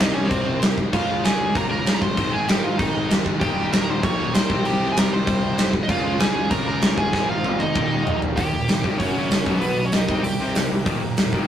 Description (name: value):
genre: punk rock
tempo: 193 BPM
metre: 4/4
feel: straight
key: Eb mixolydian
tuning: A4 = 441 Hz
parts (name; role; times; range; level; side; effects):
- high-gain lead guitar; melody; 0.0-10.5 s; B3 to Db6; -25 LUFS; right 1 dB; distortion
- cranked stack guitar; riff; 0.0-11.5 s; Eb2 to Ab4; -30 LUFS; right 5 dB; overdrive
- overdriven electric guitar; riff; 0.0-11.5 s; Eb2 to Db4; -27 LUFS; left 4 dB; none
- fuzz picked electric bass; bass; 0.0-11.4 s; Eb1 to Ab2; -30 LUFS; right 1 dB; overdrive
- big rock drum kit; drums; 0.0-11.4 s; crash cymbal, hi-hat, kick drum, snare drum, toms; -22 LUFS; equal; none
- high-gain distorted guitar; riff; 3.4-11.5 s; Eb2 to Ab4; -34 LUFS; equal; none
room: light reverb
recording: rough rehearsal-room recording, tube saturation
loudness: -18 LUFS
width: side -10 dB against mid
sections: 0.0-8.4 A section; 8.4-11.5 B section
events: drum fill 7.1-8.4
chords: 0.0 Cm; 0.9 Db; 2.2 Ab; 3.4 Eb; 4.5 Cm; 5.9 Db; 7.1 Ab; 7.8 Eb; 9.0 Gb; 9.5 B; 10.1 Cm; 10.9 Eb